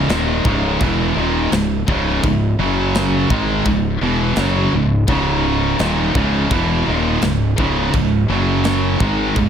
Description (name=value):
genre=heavy metal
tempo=84 BPM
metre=4/4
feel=straight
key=C# minor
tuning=A4 = 440 Hz
part: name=heavy high-gain guitar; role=riff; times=0.0-9.5 s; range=C#2 to G#3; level=-20 LUFS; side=right 9 dB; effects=distortion
part: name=scooped high-gain guitar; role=riff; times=0.0-9.5 s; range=C#2 to G#3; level=-21 LUFS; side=left 10 dB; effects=distortion
part: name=scooped high-gain guitar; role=riff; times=0.0-9.5 s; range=C#2 to G#3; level=-22 LUFS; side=equal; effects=distortion
part: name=fuzz fingered electric bass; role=bass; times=0.0-9.5 s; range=C#1 to G#1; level=-21 LUFS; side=equal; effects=overdrive
part: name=tight metal drum kit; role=drums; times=0.1-9.5 s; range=china cymbal, kick drum, snare drum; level=-23 LUFS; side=equal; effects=none
room=light reverb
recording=none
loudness=-15 LUFS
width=side -8 dB against mid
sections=0.0-9.5 A section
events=none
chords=0.0 C#m; 2.6 F#5; 3.3 C#m; 8.3 F#5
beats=0.10 0.81 1.53 | 2.24 2.95 3.67 4.38 | 5.09 5.80 6.51 7.23 | 7.94 8.65 9.37